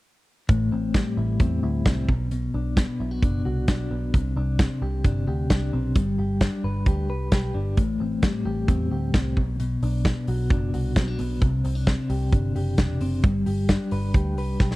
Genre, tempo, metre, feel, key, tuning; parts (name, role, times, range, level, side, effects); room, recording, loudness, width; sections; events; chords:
jangly indie pop; 132 BPM; 4/4; straight; G major; A4 = 440 Hz
clean electric guitar; arpeggios; 0.5-14.8 s; A2 to B4; -27 LUFS; left 2 dB; tremolo, tape echo
vintage muted picked electric bass; bass; 0.5-14.8 s; E1 to E2; -26 LUFS; equal
big rock drum kit; drums; 0.5-14.8 s; hi-hat, kick drum, snare drum; -21 LUFS; equal
little or no reverb; dry, close 1970s-style studio recording; -21 LUFS; side -19 dB against mid
0.5-14.8 A section
drum fill 14.6
0.5 Am7; 2.1 Bm; 4.1 G; 7.8 Am7; 9.4 Bm; 11.4 Csus2; 13.2 G